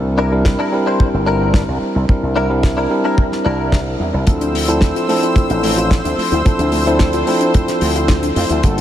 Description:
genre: nu-disco, nu disco.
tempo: 110 BPM.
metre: 4/4.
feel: straight.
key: unclear.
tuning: A4 = 440 Hz.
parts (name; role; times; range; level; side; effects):
tine electric piano; accompaniment; 0.0-8.8 s; F3 to Bb4; -18 LUFS; equal; ping-pong delay.
slap bass with an envelope filter; bass; 0.0-8.8 s; G1 to F2; -19 LUFS; equal; none.
direct-recorded clean electric guitar; riff; 0.2-4.2 s; D4 to C5; -22 LUFS; left 2 dB; ensemble chorus, ping-pong delay.
damped 70s drum kit; drums; 0.5-8.8 s; hi-hat, snare drum; -24 LUFS; left 2 dB; small room ambience.
kick drum; drums; 0.5-8.7 s; none; -14 LUFS; equal; small room ambience.
lush unison pad; sustained chords; 4.3-8.8 s; A4 to E6; -22 LUFS; equal; chorus, sidechain pumping.
soft round pluck; arpeggios; 4.3-8.8 s; A3 to F4; -24 LUFS; left 2 dB; chorus, sidechain pumping, tape echo.
room: light reverb, small room reverb.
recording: none.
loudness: -13 LUFS.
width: side -11 dB against mid.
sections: 0.0-8.8 A section.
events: none.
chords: 0.0 C9; 4.3 Dm9.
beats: 0.45 1.00 1.54 | 2.09 2.64 3.18 3.73 | 4.27 4.82 5.36 5.91 | 6.45 7.00 7.54 8.09 | 8.64.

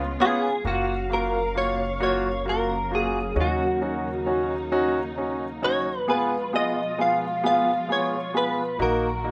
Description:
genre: pop.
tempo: 44 BPM (dotted quarters).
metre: 6/8.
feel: straight.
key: unclear.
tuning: A4 = 440 Hz.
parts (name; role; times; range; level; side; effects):
muted studio string section; sustained chords; 0.0-9.3 s; Cb3 to F5; -36 LUFS; equal; none.
upright bass; bass; 0.0-9.3 s; Gb1 to F2; -35 LUFS; equal; none.
direct-recorded clean electric guitar; melody; 0.2-9.3 s; Gb4 to F5; -27 LUFS; equal; ensemble chorus.
clear concert grand piano; accompaniment; 0.2-9.3 s; Bb3 to Ab4; -29 LUFS; equal; none.
room: wet studio reverb, RT60 0.6 s.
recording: rough home demo mix.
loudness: -25 LUFS.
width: mono.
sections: 0.6-9.3 A section.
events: none.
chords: 0.0 Db7; 0.6 Gbmaj7; 3.4 Ebm7; 6.1 Fdim; 8.8 Ebm/Bb.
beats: | 0.65 2.01 | 3.36 4.72 | 6.08 7.44 | 8.79.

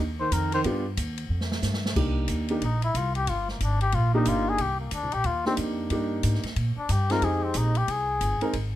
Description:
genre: jazz, small-group swing and bop.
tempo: 182 BPM.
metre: 4/4.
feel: swing 62% on 8ths.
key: C minor.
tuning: A4 = 439 Hz.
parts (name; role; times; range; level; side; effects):
upright bass; bass; 0.0-8.8 s; G1 to Bb2; -27 LUFS; equal; none.
trumpet with cup mute; melody; 0.2-0.6, 2.6-8.6 s; Bb3 to C5; -28 LUFS; left 4 dB; none.
mellow tenor saxophone; second line; 0.2-0.6 s; Eb3; -30 LUFS; right 6 dB; none.
open jazz drum kit; drums; 0.3-8.6 s; crash cymbal, hi-hat, kick drum, ride cymbal, snare drum; -34 LUFS; equal; none.
clear baby grand piano; accompaniment; 0.7-8.5 s; Ab3 to Bb4; -28 LUFS; right 1 dB; none.
room: light reverb.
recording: close, detailed microphones.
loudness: -24 LUFS.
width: side -13 dB against mid.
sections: 0.0-2.0 A section; 2.0-8.8 B section.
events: drum fill 1.3-2.0; muted trumpet solo 2.0-8.8.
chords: 0.0 Cm7; 0.6 G7; 2.0 Cm7; 7.2 Fm7.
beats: 0.32 | 0.65 0.98 1.30 1.63 | 1.96 2.29 2.62 2.95 | 3.28 3.61 3.94 4.27 | 4.59 4.92 5.25 5.58 | 5.91 6.24 6.57 6.89 | 7.22 7.55 7.88 8.21 | 8.53.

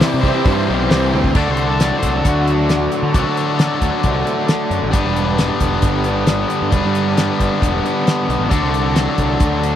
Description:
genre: classic rock.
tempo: 134 BPM.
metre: 4/4.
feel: straight.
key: D mixolydian.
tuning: A4 = 441 Hz.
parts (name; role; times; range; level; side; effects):
dark grand piano; accompaniment; 0.0-1.3 s; E4 to C5; -26 LUFS; right 8 dB; none.
bright tonewheel organ; sustained chords; 0.0-9.8 s; G3 to C5; -30 LUFS; right 3 dB; none.
crunchy overdriven guitar; riff; 0.0-9.8 s; G2 to C4; -22 LUFS; right 12 dB; none.
distorted electric guitar; riff; 0.0-9.8 s; C3 to C5; -19 LUFS; left 7 dB; overdrive.
damped 70s drum kit; drums; 0.0-9.7 s; crash cymbal, hi-hat, kick drum, snare drum; -17 LUFS; equal; none.
fuzz picked electric bass; bass; 0.1-9.8 s; E1 to D3; -20 LUFS; equal; overdrive.
overdriven slide guitar; second line; 1.4-3.6 s; F#4 to D5; -24 LUFS; equal; none.
room: light reverb.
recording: dry, close 1970s-style studio recording.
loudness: -14 LUFS.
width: side -10 dB against mid.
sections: 0.0-1.4 A section; 1.4-9.8 B section.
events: none.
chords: 0.0 C; 1.4 D; 4.9 G; 8.5 D.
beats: 0.01 0.46 0.91 | 1.35 1.80 2.25 2.69 | 3.14 3.59 4.04 4.49 | 4.93 5.38 5.83 6.28 | 6.72 7.17 7.62 8.07 | 8.52 8.96 9.41.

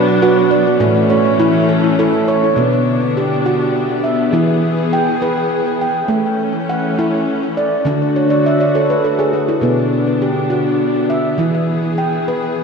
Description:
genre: world meditative, meditative tuned percussion.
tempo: 68 BPM (dotted quarters).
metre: 6/8.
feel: straight.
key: B minor.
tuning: A4 = 440 Hz.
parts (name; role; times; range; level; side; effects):
warm studio string section; sustained chords; 0.0-12.6 s; D3 to G#4; -18 LUFS; left 2 dB; shimmer reverb.
handpan; arpeggios; 0.0-12.6 s; A2 to G5; -14 LUFS; right 2 dB; ping-pong delay, shimmer reverb.
room: wet church reverb, RT60 3.2 s.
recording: none.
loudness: -13 LUFS.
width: side -5 dB against mid.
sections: 0.0-2.6 A section; 2.6-12.6 B section.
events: handpan fill 8.1-9.6.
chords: 0.0 Bm; 0.8 A; 2.6 Bm; 4.3 E; 6.1 A; 7.9 D; 9.6 Bm; 11.4 E.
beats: | 0.81 1.68 | 2.56 3.44 | 4.33 5.21 | 6.09 6.97 | 7.85 8.74 | 9.62 10.50 | 11.39 12.27.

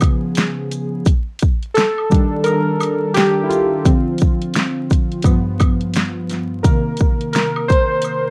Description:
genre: lo-fi hip hop.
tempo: 86 BPM.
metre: 4/4.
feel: swing 61% on 16ths.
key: unclear.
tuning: A4 = 439 Hz.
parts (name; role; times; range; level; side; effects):
warbly lo-fi synth keys; accompaniment; 0.0-8.3 s; G2 to C5; -20 LUFS; equal; chorus, low-pass filter.
pop drum kit; drums; 0.0-8.2 s; hi-hat, kick drum, snare drum; -18 LUFS; equal; none.
maracas and woodblock; percussion; 0.0-8.2 s; none; -32 LUFS; equal; none.
room: light reverb.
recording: dark, warm production, vinyl crackle.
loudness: -17 LUFS.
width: mono.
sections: 0.0-8.3 A section.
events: synth keys solo 0.0-8.3.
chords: 0.0 C#7; 1.1 Ebmaj7#11; 3.9 Dm7; 5.2 G7; 6.6 Cm7.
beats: 0.36 | 1.06 1.76 2.46 3.16 | 3.85 4.55 5.25 5.95 | 6.64 7.34 8.04.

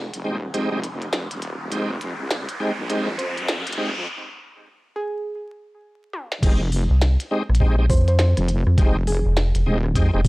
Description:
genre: glitch hop.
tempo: 102 BPM.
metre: 4/4.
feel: swing 62% on 16ths.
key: F minor.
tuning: A4 = 442 Hz.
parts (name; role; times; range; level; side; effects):
woody wave-folded pluck; melody; 0.0-9.9 s; Ab4 to C5; -29 LUFS; right 1 dB; chorus, tape echo.
wobble bass; bass; 0.0-9.9 s; Eb1 to F2; -25 LUFS; equal; chorus, overdrive, high-pass filter.
riser; sound effects; 0.0-4.1 s; none; -30 LUFS; equal; none.
glitchy drum kit; drums; 0.1-10.3 s; crash cymbal, hi-hat, rim click, snare drum, toms; -28 LUFS; equal; high-pass filter on hats, high-pass filter on snare, high-pass filter on toms, high-pass filter on cymbals.
bright tonewheel organ; stabs; 0.2-10.2 s; Ab3 to G4; -26 LUFS; equal; chorus vibrato, slow rotary speaker, vintage 12-bit sampler grit, sidechain pumping, tape echo.
electronic kick drum; drums; 6.4-10.3 s; none; -18 LUFS; equal; overdrive.
rubbery square bass; bass; 6.9-10.3 s; F1 to F2; -17 LUFS; equal; none.
room: light reverb.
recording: dry, gritty hardware recording, transformer saturation, vinyl crackle, high-pass filter.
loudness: -19 LUFS.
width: side -22 dB against mid.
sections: 0.0-6.4 A section; 6.4-10.3 B section.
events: build-up 0.0-6.4; riser 0.0-4.1; filter sweep on synth pluck 0.0-6.4; break 4.1-6.4; drum fill 6.1; drop 6.4-10.3.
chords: 0.0 Fm9.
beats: 0.54 1.13 | 1.72 2.31 2.90 3.48 | 4.07 4.66 5.25 5.84 | 6.43 7.01 7.60 8.19 | 8.78 9.37 9.96.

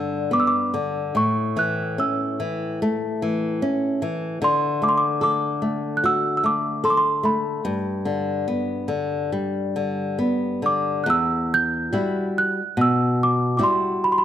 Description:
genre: fado.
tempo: 68-76 BPM.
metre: 4/4.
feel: rubato.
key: G major, E minor from 11.1 s.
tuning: A4 = 440 Hz.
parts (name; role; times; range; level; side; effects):
small celesta; melody; 0.0-14.2 s; B5 to G6; -21 LUFS; right 1 dB; none.
flamenco guitar; accompaniment; 0.0-14.2 s; E2 to A4; -23 LUFS; left 1 dB; none.
room: moderate recital hall reverb, RT60 1.4 s.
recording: close, detailed microphones.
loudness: -20 LUFS.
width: side -10 dB against mid.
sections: 0.0-11.1 A section; 11.1-14.2 B section.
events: none.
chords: 0.0 G; 1.1 A; 4.4 D5; 7.6 G; 11.1 Emadd9.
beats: 0.31 | 1.14 1.98 2.80 3.61 | 4.41 5.21 6.02 6.82 | 7.63 8.46 9.32 10.19 | 11.06 11.92 12.77 13.60.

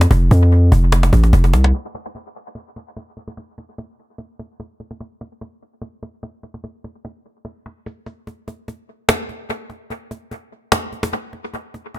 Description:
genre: hip hop, trap.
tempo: 147 BPM.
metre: 4/4.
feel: half-time.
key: unclear.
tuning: A4 = 439 Hz.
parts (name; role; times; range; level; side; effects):
distorted 808-style bass; bass; 0.0-1.7 s; F1 to F2; -11 LUFS; equal; distortion.
cajon; drums; 0.0-12.0 s; none; -21 LUFS; equal; dub echo.
room: small room ambience.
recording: echo-heavy mix, low-pass filter.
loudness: -14 LUFS.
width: side -17 dB against mid.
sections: 0.0-1.7 A section; 1.7-8.3 B section; 8.3-12.0 C section.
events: drum fill 1.3-1.7; filter sweep 1.7-8.3; kick muted 8.3-12.0.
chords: none.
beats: | 0.11 0.52 0.92 1.33 | 1.74 2.15 2.56 2.96 | 3.37 3.78 4.19 4.60 | 5.00 5.41 5.82 6.23 | 6.64 7.05 7.45 7.86 | 8.27 8.68 9.09 9.49 | 9.90 10.31 10.72 11.13 | 11.54 11.94.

